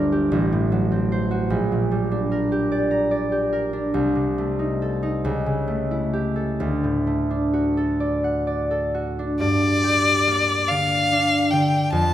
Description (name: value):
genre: classical, romantic duo for violin and harp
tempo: 42-51 BPM (dotted quarters)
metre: 6/8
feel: rubato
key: G minor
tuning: A4 = 439 Hz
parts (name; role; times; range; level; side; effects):
- concert harp; accompaniment; 0.0-12.1 s; G1 to Bb5; -20 LUFS; equal; none
- rich violin; melody; 9.4-12.1 s; D5 to A5; -19 LUFS; left 2 dB; none
room: moderate scoring stage reverb, RT60 1.9 s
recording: none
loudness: -19 LUFS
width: side -12 dB against mid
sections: 0.0-9.4 A section; 9.4-12.1 B section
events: none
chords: 0.3 F#dim/A; 1.5 Gm/Bb; 3.9 Adim/C; 5.2 A7/C#; 6.6 D; 9.4 Gm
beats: 0.33 | 1.51 2.70 | 3.95 5.24 | 6.61 8.00 | 9.40 10.69 | 11.93